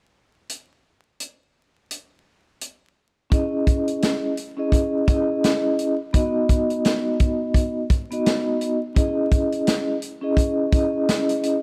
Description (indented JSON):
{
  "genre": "hip hop, boom-bap hip-hop",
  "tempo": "85 BPM",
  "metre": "4/4",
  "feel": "swing 59% on 16ths",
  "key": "C# minor",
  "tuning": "A4 = 440 Hz",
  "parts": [
    { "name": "vintage drum kit", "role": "drums", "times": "0.5-11.6 s", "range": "hi-hat, kick drum, snare drum", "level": "-23 LUFS", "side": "equal", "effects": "none" },
    { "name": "vibraphone with soft mallets", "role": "accompaniment", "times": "3.3-11.6 s", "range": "B3 to D#5", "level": "-24 LUFS", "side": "equal", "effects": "cassette tape, high-pass filter, low-pass filter" }
  ],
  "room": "light reverb",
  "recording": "vinyl crackle",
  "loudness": "-22 LUFS",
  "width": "mono",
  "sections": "0.5-3.3 A section; 3.3-11.6 B section",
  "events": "none",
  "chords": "0.5 N.C.; 3.3 C#madd9; 6.1 B; 9.0 C#madd9"
}